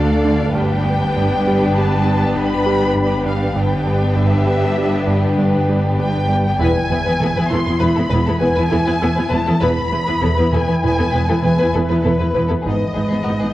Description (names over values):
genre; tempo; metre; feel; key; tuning
cinematic; 99 BPM; 5/4; straight; unclear; A4 = 443 Hz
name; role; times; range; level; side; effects
rich studio violin section; melody; 0.0-13.5 s; B4 to C6; -24 LUFS; left 2 dB; none
warm studio violin section; second line; 0.0-13.5 s; F#4 to D5; -24 LUFS; left 2 dB; none
rich studio viola section; accompaniment; 0.0-13.5 s; A3 to E4; -23 LUFS; equal; none
glass harmonica; sustained chords; 0.0-13.5 s; B3 to B5; -28 LUFS; equal; none
mellow French horn section; sustained chords; 0.0-12.9 s; B3 to B4; -25 LUFS; left 3 dB; none
fat analog bass; riff; 0.0-13.5 s; E2 to G3; -22 LUFS; right 2 dB; none
rich studio cello section; bass; 0.0-13.5 s; D2 to G#2; -22 LUFS; right 1 dB; none
rich studio double bass section; bass; 0.0-13.3 s; E1 to D2; -24 LUFS; right 1 dB; none
analog drone; drone; 0.0-13.5 s; G1 to E2; -24 LUFS; equal; chorus
music box; texture; 0.0-2.3, 9.0-10.8 s; E6 to F6; -41 LUFS; right 1 dB; none
room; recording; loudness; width
wet scoring stage reverb, RT60 1.8 s; worn, warbling old tape, cassette tape, warbly pitch drift; -14 LUFS; side -15 dB against mid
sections
0.0-13.5 A section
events
none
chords
0.0 Dm; 0.5 G; 6.6 E; 12.7 G#m